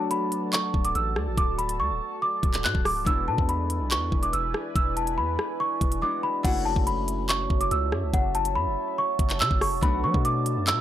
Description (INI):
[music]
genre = hip hop, drill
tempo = 142 BPM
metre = 4/4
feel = half-time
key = F# minor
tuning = A4 = 441 Hz
[part]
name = worn celesta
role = melody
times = 0.0-10.8 s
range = F#5 to F#6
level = -27 LUFS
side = equal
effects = tape echo
[part]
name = concert harp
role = accompaniment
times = 0.0-10.8 s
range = F#3 to F#4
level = -35 LUFS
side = left 3 dB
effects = none
[part]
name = deep dark ambient pad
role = sustained chords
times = 0.0-10.8 s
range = E4 to A5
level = -34 LUFS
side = right 2 dB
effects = chorus, built-in reverb
[part]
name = drill drum kit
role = drums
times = 0.1-10.8 s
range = crash cymbal, handclaps, hi-hat, kick drum, rim click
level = -26 LUFS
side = equal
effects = none
[part]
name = long sustained 808-style bass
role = bass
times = 0.7-10.8 s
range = C#1 to F#3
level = -29 LUFS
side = equal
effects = none
[sound]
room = little or no reverb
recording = dry, gritty hardware recording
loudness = -23 LUFS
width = side -12 dB against mid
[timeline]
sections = 0.0-6.4 A section; 6.4-10.8 B section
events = break 0.0-0.5; drums muted 6.0-6.4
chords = 0.0 D; 3.1 E7; 6.4 F#m7; 9.8 Bm7